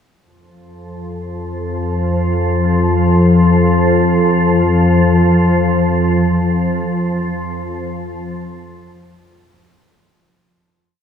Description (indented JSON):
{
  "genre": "ambient",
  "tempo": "free time",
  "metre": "none",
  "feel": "none",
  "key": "unclear",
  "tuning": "A4 = 440 Hz",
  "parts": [
    { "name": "organ-like drone", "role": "solo", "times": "1.0-10.5 s", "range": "F2 to F3", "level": "-13 LUFS", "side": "left 1 dB", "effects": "ensemble chorus, built-in reverb, tape echo" }
  ],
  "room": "wet huge ambient reverb, RT60 8.7 s",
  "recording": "studio reverb",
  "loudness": "-12 LUFS",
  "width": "side -8 dB against mid",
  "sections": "0.2-10.4 A section",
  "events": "fade-out 5.3-10.4",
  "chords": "none",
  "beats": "free time"
}